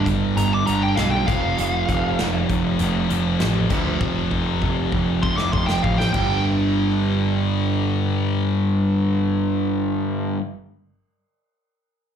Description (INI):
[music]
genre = hard rock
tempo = 98 BPM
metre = 4/4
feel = straight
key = unclear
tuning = A4 = 440 Hz
[part]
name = smooth overdriven lead guitar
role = melody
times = 0.0-6.4 s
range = F5 to D6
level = -24 LUFS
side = right 1 dB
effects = slapback echo
[part]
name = overdriven semi-hollow guitar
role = riff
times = 0.0-10.4 s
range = F2 to G3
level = -24 LUFS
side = right 8 dB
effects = none
[part]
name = tight distorted guitar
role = riff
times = 0.0-10.4 s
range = F2 to G3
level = -25 LUFS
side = left 10 dB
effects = distortion, slapback echo
[part]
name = fuzz picked electric bass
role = bass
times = 0.1-10.3 s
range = F1 to D2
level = -23 LUFS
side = equal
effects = overdrive
[part]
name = big rock drum kit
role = drums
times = 0.1-6.3 s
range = crash cymbal, hi-hat, kick drum, snare drum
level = -27 LUFS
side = equal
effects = none
[sound]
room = little or no reverb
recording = live gig heard through the venue's PA, club reverb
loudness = -18 LUFS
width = side -8 dB against mid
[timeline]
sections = 0.0-6.4 A section; 6.4-8.9 B section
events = lead electric guitar solo 0.0-6.4; drum fill 4.0-6.4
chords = 0.0 G; 1.3 F5; 6.1 G5